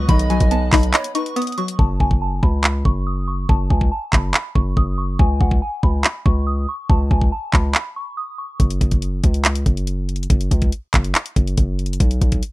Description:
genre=hip hop, trap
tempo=141 BPM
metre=4/4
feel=half-time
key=F# dorian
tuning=A4 = 440 Hz
part: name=soft synth bell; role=melody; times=0.0-8.6 s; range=F#5 to D#6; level=-26 LUFS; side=equal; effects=chorus, low-pass filter
part: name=string-like resonator pluck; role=accompaniment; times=0.0-1.8 s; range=D#3 to D#5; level=-23 LUFS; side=left 3 dB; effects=chorus, low-pass filter
part: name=muted studio string section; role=sustained chords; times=0.0-1.8 s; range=B3 to F#5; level=-36 LUFS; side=right 1 dB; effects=none
part: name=distorted 808-style bass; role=bass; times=0.0-12.4 s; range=F#1 to C#2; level=-20 LUFS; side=equal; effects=distortion
part: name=breathy mellow large pan pipes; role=second line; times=0.1-1.4 s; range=B4 to D#5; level=-29 LUFS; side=right 4 dB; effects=ping-pong delay
part: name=trap drum kit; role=drums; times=0.1-12.5 s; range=handclaps, hi-hat, kick drum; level=-17 LUFS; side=equal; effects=none
room=little or no reverb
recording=rough home demo mix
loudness=-16 LUFS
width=side -19 dB against mid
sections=0.0-1.8 A section; 1.8-12.5 B section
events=break 0.9-1.8, 7.7-8.6; hi-hats muted 1.8-8.6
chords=0.0 B; 1.8 F#5; 5.2 C#7(no3); 8.6 F#5; 12.0 N.C.

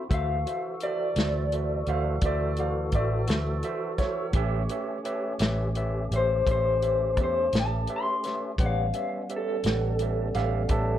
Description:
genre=slow blues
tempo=57 BPM (dotted quarters)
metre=12/8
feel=straight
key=unclear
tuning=A4 = 443 Hz
part: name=electric guitar through a small old amp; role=melody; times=0.0-11.0 s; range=A4 to C6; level=-28 LUFS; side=left 2 dB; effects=tremolo
part: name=overdriven tine electric piano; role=accompaniment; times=0.0-11.0 s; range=F#4 to F#5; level=-33 LUFS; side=moving between left 3 dB and right 8 dB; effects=auto-pan
part: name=tonewheel organ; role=sustained chords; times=0.0-11.0 s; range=E3 to A4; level=-35 LUFS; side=equal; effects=slow rotary speaker
part: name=vintage muted fingered electric bass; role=bass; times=0.1-11.0 s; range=A1 to E2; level=-28 LUFS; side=equal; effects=none
part: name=warm soul drum kit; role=drums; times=0.1-10.9 s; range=hi-hat, kick drum, snare drum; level=-28 LUFS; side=equal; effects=none
part: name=warm upright piano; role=second line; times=1.9-11.0 s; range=A4 to F5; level=-34 LUFS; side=right 4 dB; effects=none
room=light reverb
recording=worn, warbling old tape, cassette tape, warbly pitch drift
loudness=-24 LUFS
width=side -11 dB against mid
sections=0.0-11.0 A section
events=none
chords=0.0 D9; 4.4 A9

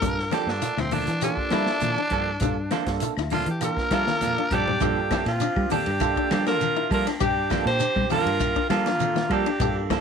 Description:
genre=afrobeat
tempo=100 BPM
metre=4/4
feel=straight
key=G dorian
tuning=A4 = 440 Hz
part: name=raspy tenor saxophone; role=melody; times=0.0-4.8 s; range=C4 to D5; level=-27 LUFS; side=left 1 dB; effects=none
part: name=barky tine electric piano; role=accompaniment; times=0.0-9.9 s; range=Bb3 to Bb4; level=-31 LUFS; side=right 14 dB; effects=overdrive, lush chorus
part: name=guzheng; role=arpeggios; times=0.0-10.0 s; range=D4 to G4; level=-31 LUFS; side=left 15 dB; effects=none
part: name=fingered electric bass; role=bass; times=0.0-10.0 s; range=D2 to G3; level=-29 LUFS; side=equal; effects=none
part: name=vintage drum kit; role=drums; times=0.0-10.0 s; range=hi-hat, kick drum, ride cymbal, snare drum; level=-31 LUFS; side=equal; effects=none
part: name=congas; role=percussion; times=0.0-10.0 s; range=none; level=-32 LUFS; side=left 11 dB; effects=none
part: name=shekere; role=percussion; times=0.0-10.0 s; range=none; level=-34 LUFS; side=right 9 dB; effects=none
part: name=semi-hollow electric guitar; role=stabs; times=0.3-10.0 s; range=F3 to A4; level=-31 LUFS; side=right 12 dB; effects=vibrato effect
part: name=claves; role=percussion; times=0.3-10.0 s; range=none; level=-43 LUFS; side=left 16 dB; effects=none
part: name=edgy alto saxophone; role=melody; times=3.9-9.8 s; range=F4 to C5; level=-26 LUFS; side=left 1 dB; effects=slapback echo
part: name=breathy trumpet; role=second line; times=3.9-9.8 s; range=Bb3 to G4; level=-32 LUFS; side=right 14 dB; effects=none
room=light reverb, small room ambience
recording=1960s-style stereo with parts hard left and right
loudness=-21 LUFS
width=side -6 dB against mid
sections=0.0-4.8 A section; 4.8-10.0 B section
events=tenor saxophone solo 0.0-4.8; drum fill 4.1-4.8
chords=0.0 Gm9

